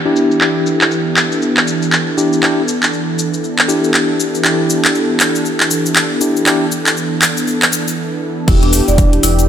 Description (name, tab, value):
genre	afro house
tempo	119 BPM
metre	4/4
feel	swing 60% on 16ths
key	E minor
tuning	A4 = 439 Hz
part	warm analog pad	sustained chords	0.0-9.5 s	E3 to A4	-18 LUFS	right 2 dB	chorus, sidechain pumping
part	tine electric piano	stabs	0.1-9.5 s	D4 to G4	-18 LUFS	left 2 dB	fast stereo tremolo, sidechain pumping, digital delay
part	afro-pop drum kit	drums	0.2-9.5 s	crash cymbal, handclaps, hi-hat, shaker	-15 LUFS	equal	low-pass filter on snare, low-pass filter on perc, low-pass filter on hats, low-pass filter on cymbals
part	marimba with medium hard mallets	arpeggios	8.5-9.4 s	D4 to D5	-17 LUFS	left 1 dB	sidechain pumping, digital delay
part	round analog bass	bass	8.5-9.5 s	E1	-14 LUFS	equal	sidechain pumping
part	electronic kick drum	drums	8.5-9.1 s	none	-12 LUFS	equal	none
room	moderate lush hall reverb, RT60 2.9 s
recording	none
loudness	-11 LUFS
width	side -9 dB against mid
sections	0.0-8.5 A section; 8.5-9.5 B section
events	break 8.0-8.5; drop 8.5-9.5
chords	0.0 Em7